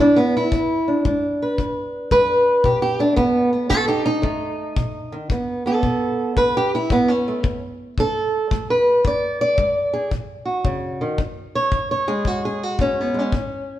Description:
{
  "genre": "acoustic country blues, solo or duo",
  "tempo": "112 BPM",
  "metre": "4/4",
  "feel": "swing 65% on 8ths",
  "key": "unclear",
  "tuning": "A4 = 435 Hz",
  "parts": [
    { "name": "fingerpicked old ladder-braced acoustic guitar", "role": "melody", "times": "0.0-13.8 s", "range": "E2 to D5", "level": "-18 LUFS", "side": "equal", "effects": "none" },
    { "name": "kick drum", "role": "drums", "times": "0.5-13.5 s", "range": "none", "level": "-25 LUFS", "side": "left 2 dB", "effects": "none" }
  ],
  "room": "wet stone room reverb, RT60 1.4 s",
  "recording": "band playing live in one room",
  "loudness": "-18 LUFS",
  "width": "side -13 dB against mid",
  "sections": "0.0-11.2 A section; 11.2-13.8 B section",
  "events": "steel-string acoustic guitar solo 0.0-11.2",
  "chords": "0.0 E7; 2.6 B7; 6.9 A; 9.0 E7; 10.1 B5; 11.2 E"
}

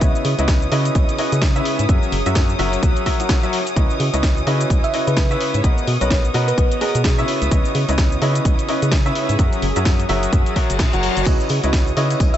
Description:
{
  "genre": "piano house",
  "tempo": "128 BPM",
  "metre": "4/4",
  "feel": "swing 59% on 16ths",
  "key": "C# dorian",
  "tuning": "A4 = 438 Hz",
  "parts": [
    { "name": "thumb-piano-like synth pluck", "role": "melody", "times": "0.0-0.2, 4.8-7.2, 12.3-12.4 s", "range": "G#4 to E5", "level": "-26 LUFS", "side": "right 1 dB", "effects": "chorus, dub echo" },
    { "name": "rich chamber violin section", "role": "sustained chords", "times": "0.0-12.4 s", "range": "C#5 to D#6", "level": "-29 LUFS", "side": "right 1 dB", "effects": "sidechain pumping" },
    { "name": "clear concert grand piano", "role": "riff", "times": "0.0-12.4 s", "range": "C#3 to F#5", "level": "-22 LUFS", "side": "left 1 dB", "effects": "sidechain pumping, dub echo" },
    { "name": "organ-like FM bass", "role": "bass", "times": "0.0-12.3 s", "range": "F#1 to C#3", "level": "-21 LUFS", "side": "equal", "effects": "sidechain pumping" },
    { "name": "electronic kick drum", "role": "drums", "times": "0.0-12.3 s", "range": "none", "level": "-17 LUFS", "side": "equal", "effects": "none" },
    { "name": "house drum kit", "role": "drums", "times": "0.0-12.4 s", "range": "crash cymbal, hi-hat, shaker, snare drum", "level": "-26 LUFS", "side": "left 1 dB", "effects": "dub echo" },
    { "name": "granular cloud pad", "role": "texture", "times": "0.0-12.4 s", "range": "B3 to D#6", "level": "-28 LUFS", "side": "right 2 dB", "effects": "built-in reverb, sidechain pumping" },
    { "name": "reverse cymbal", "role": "sound effects", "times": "10.5-11.3 s", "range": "none", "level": "-28 LUFS", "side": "left 6 dB", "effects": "none" },
    { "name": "tambourine", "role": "percussion", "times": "11.3-12.4 s", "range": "none", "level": "-37 LUFS", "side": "left 4 dB", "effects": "none" }
  ],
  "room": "light reverb, digital ambience",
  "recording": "echo-heavy mix, nothing above 8.0 kHz",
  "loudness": "-15 LUFS",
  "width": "side -11 dB against mid",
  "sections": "0.0-12.4 A section",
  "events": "reverse cymbal 10.5-11.3",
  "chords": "0.0 C#m9; 1.9 F#7; 3.8 C#m9; 5.6 Bmaj7; 7.3 C#m9; 9.4 F#7; 11.3 C#m9"
}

